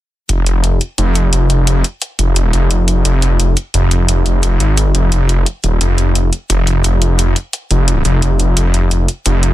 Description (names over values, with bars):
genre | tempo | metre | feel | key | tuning
dark technical drum and bass | 174 BPM | 4/4 | straight | F minor | A4 = 445 Hz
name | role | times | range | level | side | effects
wide detuned saw bass | bass | 0.3-9.5 s | Eb1 to Ab1 | -11 LUFS | equal | chorus, overdrive
electronic hi-hat | drums | 0.3-9.5 s | none | -19 LUFS | equal | none
room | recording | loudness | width
little or no reverb | dense, heavily limited modern master | -11 LUFS | side -14 dB against mid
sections
0.3-9.5 A section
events
none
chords
none